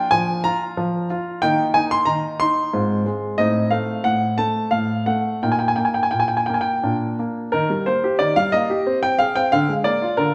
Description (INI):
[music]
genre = classical-period piano sonatina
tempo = 91 BPM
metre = 3/4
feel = rubato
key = Eb major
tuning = A4 = 440 Hz
[part]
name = clear baby grand piano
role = solo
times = 0.0-10.3 s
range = Ab2 to C6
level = -20 LUFS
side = equal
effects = none
[sound]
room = wet recital hall reverb, RT60 1.3 s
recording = none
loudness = -20 LUFS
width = mono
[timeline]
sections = 0.0-7.5 A section; 7.5-10.3 B section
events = none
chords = 0.0 Bb/F; 1.4 Eb5; 2.7 Fm/Ab; 3.4 Adim; 5.4 Eb5/Bb; 6.8 Bb; 7.5 Eb; 8.9 Ab/C; 9.5 Bb7/D